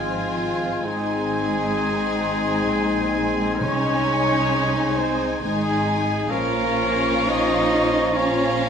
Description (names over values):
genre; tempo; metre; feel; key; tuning
classical, slow romantic movement for symphony orchestra; 59-70 BPM; 3/4; rubato; unclear; A4 = 439 Hz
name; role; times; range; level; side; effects
rich studio violin section; melody; 0.0-8.7 s; F5 to Ab5; -31 LUFS; left 2 dB; none
bright oboe; second line; 0.0-8.7 s; Ab5 to Bb5; -32 LUFS; right 1 dB; none
mellow clarinet; second line; 0.0-8.7 s; Eb4 to F4; -31 LUFS; left 6 dB; none
rich chamber violin section; second line; 0.0-8.7 s; Eb4 to F4; -31 LUFS; left 3 dB; none
silver concert flute; second line; 0.0-8.7 s; C6 to Db6; -31 LUFS; left 2 dB; none
mellow bassoon; accompaniment; 0.0-8.7 s; F3 to Ab3; -30 LUFS; right 2 dB; none
rich studio viola section; accompaniment; 0.0-8.7 s; C4 to Eb4; -30 LUFS; equal; none
dark French horn section; sustained chords; 0.0-8.7 s; F3 to F4; -30 LUFS; left 4 dB; none
mellow trumpet section; stabs; 0.0-8.7 s; F4 to Eb5; -25 LUFS; right 1 dB; none
warm chamber double bass section; bass; 0.0-8.7 s; Ab1 to C2; -30 LUFS; right 3 dB; none
warm symphonic cello section; bass; 0.0-8.7 s; F3 to Eb4; -27 LUFS; right 1 dB; none
timpani; percussion; 3.6-4.9 s; C3; -32 LUFS; equal; none
room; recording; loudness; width
wet recital hall reverb, RT60 1.4 s; nothing above 10.4 kHz; -19 LUFS; side -7 dB against mid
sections
0.0-8.7 A section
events
none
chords
0.0 Fm/Ab; 0.8 Ab; 3.6 Ab/C; 6.3 Bbm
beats
| 0.85 1.74 2.65 | 3.62 4.53 5.43 | 6.32 7.28 8.15